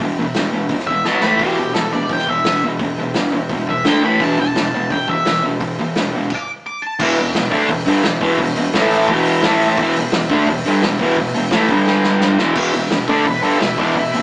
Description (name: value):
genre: garage rock duo or trio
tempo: 172 BPM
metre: 4/4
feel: straight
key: E minor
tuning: A4 = 441 Hz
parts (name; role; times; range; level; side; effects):
- combo organ; sustained chords; 0.0-14.2 s; E4 to G5; -28 LUFS; equal; none
- fuzz guitar; riff; 0.0-14.2 s; E2 to D4; -16 LUFS; equal; distortion
- vintage drum kit; drums; 0.0-14.2 s; crash cymbal, hi-hat, kick drum, snare drum; -21 LUFS; equal; none
- octave-fuzz lead guitar; melody; 0.9-7.0, 13.1-14.2 s; D4 to D6; -19 LUFS; equal; distortion
room: moderate studio ambience, RT60 0.5 s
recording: rough rehearsal-room recording, tube saturation, small speaker sound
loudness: -14 LUFS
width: side -24 dB against mid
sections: 0.0-7.0 A section; 7.0-12.6 B section; 12.6-14.2 C section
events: drum fill 1.1-1.4, 11.9-12.6; stop 6.3-7.0; lead electric guitar solo 12.6-14.2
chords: 0.0 Em; 1.1 B5; 1.2 A5; 1.4 Em; 3.9 D5; 4.0 A5; 4.2 Em; 6.7 N.C.; 7.0 Em; 8.7 A5; 9.1 Em; 9.4 A5; 9.8 Em; 11.7 G5; 12.4 E5; 12.6 Em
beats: | 0.01 0.36 0.71 1.06 | 1.41 1.76 2.11 2.46 | 2.81 3.16 3.51 3.86 | 4.21 4.56 4.91 5.26 | 5.61 5.96 6.30 6.65 | 7.00 7.35 7.70 8.04 | 8.39 8.74 9.09 9.43 | 9.78 10.13 10.47 10.82 | 11.17 11.52 11.87 12.21 | 12.56 12.91 13.26 13.60 | 13.95